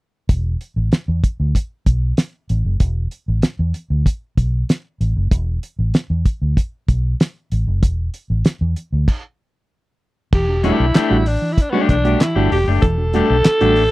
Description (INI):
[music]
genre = funk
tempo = 96 BPM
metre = 4/4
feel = straight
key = E minor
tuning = A4 = 440 Hz
[part]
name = vintage muted fingered electric bass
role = bass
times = 0.3-13.9 s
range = E1 to E2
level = -18 LUFS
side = equal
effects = none
[part]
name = cloth-damped thuddy drum kit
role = drums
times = 0.3-13.9 s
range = crash cymbal, handclaps, hi-hat, kick drum, snare drum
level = -15 LUFS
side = equal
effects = none
[part]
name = growling alto saxophone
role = melody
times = 10.3-13.9 s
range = B3 to A4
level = -19 LUFS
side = equal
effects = none
[part]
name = reed electric piano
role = stabs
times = 10.3-13.7 s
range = E3 to F#4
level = -20 LUFS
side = right 4 dB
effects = none
[part]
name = electric guitar at the edge of break-up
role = accompaniment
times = 10.6-13.8 s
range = A3 to G4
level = -21 LUFS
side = left 7 dB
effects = spring reverb
[sound]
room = little or no reverb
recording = dry, close 1970s-style studio recording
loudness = -16 LUFS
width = side -19 dB against mid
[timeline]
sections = 0.3-10.3 A section; 10.3-13.9 B section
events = stop 9.1-10.3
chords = 0.3 E7sus4; 10.3 Em11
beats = | 0.29 0.92 1.55 2.18 | 2.81 3.43 4.06 4.69 | 5.32 5.94 6.57 7.20 | 7.82 8.45 9.08 9.70 | 10.33 10.95 11.58 12.20 | 12.83 13.45